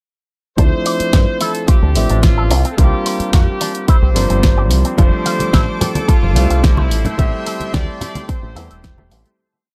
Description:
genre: nu-disco, nu disco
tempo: 109 BPM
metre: 4/4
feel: straight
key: D minor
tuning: A4 = 435 Hz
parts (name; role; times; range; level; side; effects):
- clear trumpet section; melody; 0.6-9.1 s; E4 to E5; -26 LUFS; equal; tape echo
- warm concert grand piano; accompaniment; 0.6-9.4 s; F3 to E5; -24 LUFS; equal; low-pass filter, tape echo
- electric guitar with an envelope filter; riff; 0.6-9.3 s; G3 to F5; -29 LUFS; equal; subtle chorus, vintage 12-bit sampler grit, low-pass filter, tape echo
- fingered electric bass with an envelope filter; bass; 0.6-9.2 s; E1 to G2; -18 LUFS; equal; sidechain pumping
- electronic kick drum; drums; 0.6-9.0 s; none; -15 LUFS; equal; none
- pop drum kit; drums; 0.6-9.4 s; hi-hat, snare drum; -24 LUFS; equal; tape echo
- lush unison pad; sustained chords; 5.0-9.4 s; A4 to D6; -32 LUFS; equal; chorus, sidechain pumping
- congas; percussion; 5.0-9.1 s; none; -25 LUFS; equal; tape echo
room: light reverb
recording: echo-heavy mix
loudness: -15 LUFS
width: mono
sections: 0.6-9.4 groove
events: filter sweep on grand piano 0.6-9.4; fade-out 6.5-9.4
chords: 0.6 Dm7; 2.5 C9sus4; 5.0 F6; 6.9 Am7

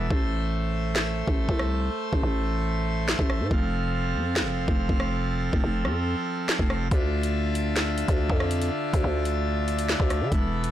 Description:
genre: hip hop, drill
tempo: 141 BPM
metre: 4/4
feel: half-time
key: unclear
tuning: A4 = 440 Hz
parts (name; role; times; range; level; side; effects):
- pipe organ, full organ; sustained chords; 0.0-10.7 s; D3 to F5; -29 LUFS; equal; none
- growling 808-style bass; bass; 0.0-10.7 s; E1 to D3; -26 LUFS; equal; none
- drill drum kit; drums; 0.1-10.7 s; handclaps, hi-hat, kick drum, rim click, snare drum; -26 LUFS; equal; none
room: little or no reverb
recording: blown-out, overdriven recording, overdrive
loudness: -23 LUFS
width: side -12 dB against mid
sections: 0.0-10.7 A section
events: hi-hats muted 0.1-6.9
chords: 0.1 Am; 3.5 F; 6.9 Dmadd9

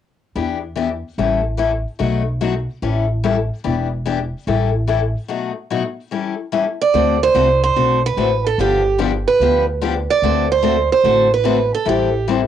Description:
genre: acoustic string swing (jazz manouche)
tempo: 146 BPM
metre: 4/4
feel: swing 64% on 8ths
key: D mixolydian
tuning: A4 = 440 Hz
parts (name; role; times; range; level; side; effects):
- picked steel-string acoustic guitar; accompaniment; 0.4-12.4 s; B2 to A4; -20 LUFS; left 8 dB; none
- upright bass; bass; 0.4-12.5 s; E1 to E2; -22 LUFS; equal; transformer saturation
- picked steel-string acoustic guitar; melody; 6.8-12.3 s; G4 to D5; -16 LUFS; right 6 dB; cassette tape
room: moderate small room ambience, RT60 0.5 s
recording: home recording on cassette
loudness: -15 LUFS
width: side -9 dB against mid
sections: 0.4-6.9 A section; 6.9-12.5 B section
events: none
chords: 0.4 Em7; 1.2 A7; 2.0 B7; 2.8 A7; 3.6 Em7; 4.5 A7; 5.3 B7; 6.1 A7; 6.9 D7; 8.6 G7; 10.2 D7; 11.9 Am7

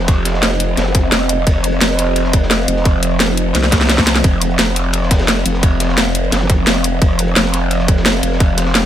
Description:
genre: dark technical drum and bass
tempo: 173 BPM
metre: 4/4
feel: straight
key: unclear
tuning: A4 = 438 Hz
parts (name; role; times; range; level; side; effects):
- dark analog pad; sustained chords; 0.0-8.9 s; F3 to F5; -20 LUFS; right 1 dB; chorus, phaser, sidechain pumping
- growl bass; bass; 0.0-8.9 s; F1 to C2; -17 LUFS; equal; chorus, overdrive
- crunchy breakbeat drum kit; drums; 0.1-8.8 s; ride cymbal, snare drum; -25 LUFS; equal; high-pass filter on cymbals, high-pass filter on snare, high-pass filter on room
- drum and bass drum kit; drums; 0.1-8.8 s; hi-hat, snare drum; -16 LUFS; equal; overdrive
- electronic kick drum; drums; 0.1-8.5 s; none; -14 LUFS; equal; overdrive
room: little or no reverb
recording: none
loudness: -12 LUFS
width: side -11 dB against mid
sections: 0.0-8.9 A section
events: drum fill 3.5-4.2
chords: 0.0 F5

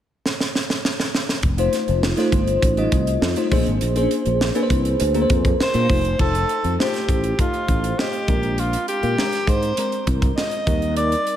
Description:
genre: polished 1980s jazz-funk pop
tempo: 101 BPM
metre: 4/4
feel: straight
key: unclear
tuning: A4 = 442 Hz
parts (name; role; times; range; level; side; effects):
- tight funk drum kit; drums; 0.3-11.4 s; crash cymbal, hi-hat, kick drum, snare drum; -22 LUFS; equal; none
- sustaining fretless electric bass; bass; 1.4-11.1 s; F1 to Bb2; -22 LUFS; equal; analog chorus
- bell-like FM electric piano; accompaniment; 1.6-11.4 s; G3 to Eb5; -23 LUFS; left 1 dB; phaser, wide subtle chorus
- breathy alto saxophone; melody; 5.6-11.4 s; F4 to Eb5; -23 LUFS; equal; none
room: moderate lush hall reverb, RT60 2.6 s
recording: big arena sound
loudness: -18 LUFS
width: side -11 dB against mid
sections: 0.0-1.4 A section; 1.4-6.2 B section; 6.2-11.4 C section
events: drum fill 0.2-1.4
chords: 0.0 N.C.; 1.4 F7; 3.5 Bb9; 5.9 F7; 8.3 Bb9; 10.7 Eb6

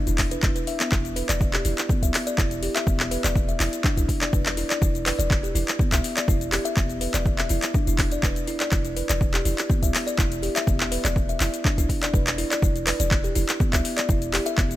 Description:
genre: afro house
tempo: 123 BPM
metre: 4/4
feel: swing 53% on 16ths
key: E minor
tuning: A4 = 443 Hz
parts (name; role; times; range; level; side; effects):
- kalimba; arpeggios; 0.0-14.7 s; B3 to E5; -27 LUFS; equal; sidechain pumping, digital delay
- warm 808-style bass; bass; 0.1-14.8 s; D1 to B1; -27 LUFS; equal; sidechain pumping
- afro-pop drum kit; drums; 0.1-14.8 s; handclaps, hi-hat, shaker; -26 LUFS; left 1 dB; none
- electronic kick drum; drums; 0.2-14.7 s; none; -24 LUFS; equal; overdrive
room: little or no reverb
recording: none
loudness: -21 LUFS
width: side -14 dB against mid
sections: 0.0-14.8 A section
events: none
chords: 0.0 E7(no3)

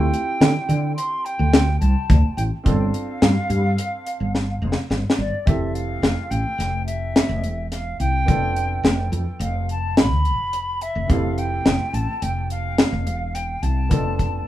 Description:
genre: progressive instrumental, band music in an uneven meter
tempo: 107 BPM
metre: 5/4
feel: straight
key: F lydian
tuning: A4 = 441 Hz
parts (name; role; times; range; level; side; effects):
- hollow concert flute; melody; 0.0-14.5 s; D5 to C6; -27 LUFS; equal; digital delay
- warm concert grand piano; accompaniment; 0.0-14.5 s; E3 to A4; -31 LUFS; right 3 dB; none
- woody fretless electric bass; bass; 0.0-14.4 s; E1 to D3; -21 LUFS; equal; ensemble chorus
- deep reggae drum kit; drums; 0.1-14.3 s; hi-hat, kick drum, snare drum; -18 LUFS; left 1 dB; none
room: light reverb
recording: rough home demo mix, small room ambience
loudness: -19 LUFS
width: side -13 dB against mid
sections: 0.0-5.5 A section; 5.5-14.5 B section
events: drum fill 4.3-5.5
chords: 0.0 Dm11; 2.7 G7sus4; 5.5 Fmaj9; 8.3 G7/F; 11.1 Fmaj9; 13.9 G9/F (rootless)

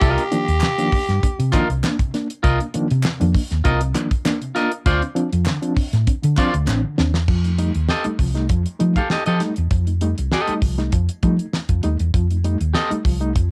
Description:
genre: funk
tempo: 99 BPM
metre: 4/4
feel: straight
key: unclear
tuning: A4 = 441 Hz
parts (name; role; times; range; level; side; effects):
- growling tenor saxophone; melody; 0.0-1.8 s; G4; -25 LUFS; equal; cassette tape
- electric guitar at the edge of break-up; accompaniment; 0.0-12.9 s; F4 to F5; -24 LUFS; equal; none
- reed electric piano; stabs; 0.0-13.5 s; C3 to Eb4; -27 LUFS; equal; fast tremolo
- hollow-body short-scale fingered electric bass; bass; 0.0-13.5 s; A1 to F3; -22 LUFS; equal; none
- damped 70s drum kit; drums; 0.0-13.5 s; crash cymbal, hi-hat, kick drum, snare drum; -24 LUFS; equal; none
- group handclap; percussion; 0.6-6.8 s; none; -32 LUFS; equal; none
room: light reverb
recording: home recording on cassette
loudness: -20 LUFS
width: mono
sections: 0.0-7.3 A section; 7.3-13.5 B section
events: drum fill 6.7-7.3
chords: 0.0 Cm11; 4.9 Dm7; 7.3 F9

